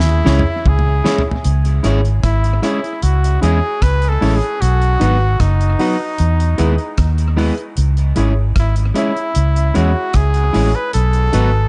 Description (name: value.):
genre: roots reggae.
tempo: 76 BPM.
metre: 4/4.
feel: straight.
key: C# minor.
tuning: A4 = 440 Hz.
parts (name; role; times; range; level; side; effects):
clear flugelhorn; melody; 0.0-11.7 s; D#4 to B4; -23 LUFS; equal; dub echo.
vintage muted fingered electric bass; bass; 0.0-11.7 s; F#1 to E2; -16 LUFS; equal; none.
damped 70s drum kit; drums; 0.0-11.5 s; hi-hat, kick drum, rim click, snare drum, toms; -23 LUFS; equal; analog delay.
warm grand piano; stabs; 0.1-11.5 s; D#4 to C#5; -27 LUFS; equal; none.
electric guitar at the edge of break-up; accompaniment; 0.2-11.5 s; F#3 to G#4; -25 LUFS; equal; dub echo.
room: light reverb, small room ambience.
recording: echo-heavy mix, nothing above 10.3 kHz.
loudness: -15 LUFS.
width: mono.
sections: 0.0-1.4 A section; 1.4-11.7 B section.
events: drum fill 0.0-1.4.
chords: 0.0 C#m; 4.6 B; 6.2 E; 7.8 C#m; 10.9 B.